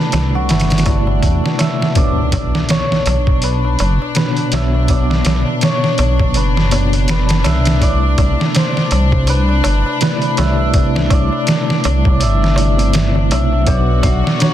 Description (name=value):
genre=trip hop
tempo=82 BPM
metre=4/4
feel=swing 58% on 16ths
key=unclear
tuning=A4 = 440 Hz
part: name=cimbalom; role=melody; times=0.0-14.5 s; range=E4 to E5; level=-22 LUFS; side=equal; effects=vintage 12-bit sampler grit, dub echo
part: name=mellow tine electric piano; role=accompaniment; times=0.0-14.5 s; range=B2 to C#6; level=-21 LUFS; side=equal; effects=medium stereo tremolo, vintage 12-bit sampler grit
part: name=clear studio string section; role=sustained chords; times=0.0-14.5 s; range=F#3 to F#4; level=-24 LUFS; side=left 6 dB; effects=none
part: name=dark detuned saw bass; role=bass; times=0.1-14.2 s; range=F#1 to E2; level=-15 LUFS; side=equal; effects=none
part: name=trip hop sampler-style drum kit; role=drums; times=0.1-14.5 s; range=hi-hat, kick drum, snare drum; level=-16 LUFS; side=right 1 dB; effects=none
part: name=darbuka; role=percussion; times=0.1-14.5 s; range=none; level=-28 LUFS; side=right 3 dB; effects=none
part: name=impact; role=sound effects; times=2.0-4.9 s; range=none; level=-24 LUFS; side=equal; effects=none
part: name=dark detuned synth bell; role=arpeggios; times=13.7-14.5 s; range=D4 to E5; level=-25 LUFS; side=left 4 dB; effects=chorus, dub echo
room=digital ambience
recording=dense, heavily limited modern master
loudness=-12 LUFS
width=side -12 dB against mid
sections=0.0-2.0 A section; 2.0-14.5 B section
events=impact 2.0-4.9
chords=0.0 C69; 2.0 Bmadd9; 7.8 C69; 13.7 Bmadd9